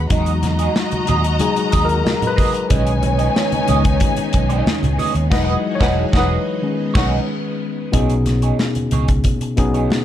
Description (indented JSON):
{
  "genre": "lush 1970s-style soul",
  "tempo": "92 BPM",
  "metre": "4/4",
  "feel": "straight",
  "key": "B major",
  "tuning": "A4 = 440 Hz",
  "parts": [
    { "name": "dark studio string section", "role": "second line", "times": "0.0-7.2 s", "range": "D#4 to A#5", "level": "-23 LUFS", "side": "left 1 dB", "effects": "none" },
    { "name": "barky tine electric piano", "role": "accompaniment", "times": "0.0-10.0 s", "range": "B2 to D#5", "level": "-21 LUFS", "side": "left 4 dB", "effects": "overdrive" },
    { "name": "fingered electric bass", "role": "bass", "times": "0.0-9.9 s", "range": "E1 to E2", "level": "-19 LUFS", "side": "equal", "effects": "none" },
    { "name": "electric guitar through a small old amp", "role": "riff", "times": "0.1-9.9 s", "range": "D#4 to D#5", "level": "-26 LUFS", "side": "right 10 dB", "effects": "wah" },
    { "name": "modern studio drum kit", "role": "drums", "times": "0.1-10.0 s", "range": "crash cymbal, hi-hat, kick drum, snare drum", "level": "-20 LUFS", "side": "equal", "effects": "none" },
    { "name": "congas", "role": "percussion", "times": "0.1-10.0 s", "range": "none", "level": "-27 LUFS", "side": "right 3 dB", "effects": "none" },
    { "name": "string machine, violins", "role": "sustained chords", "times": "2.7-7.9 s", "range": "E3 to G#4", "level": "-28 LUFS", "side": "right 1 dB", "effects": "ensemble chorus" }
  ],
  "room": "small room ambience",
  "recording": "dark, warm production",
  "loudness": "-15 LUFS",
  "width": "side -11 dB against mid",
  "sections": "0.0-7.9 A section; 7.9-10.0 B section",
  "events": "tine electric piano solo 0.0-7.9; band accent 5.3-7.9",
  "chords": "0.1 Emaj9; 2.7 B69; 5.3 Emaj9; 6.6 B69"
}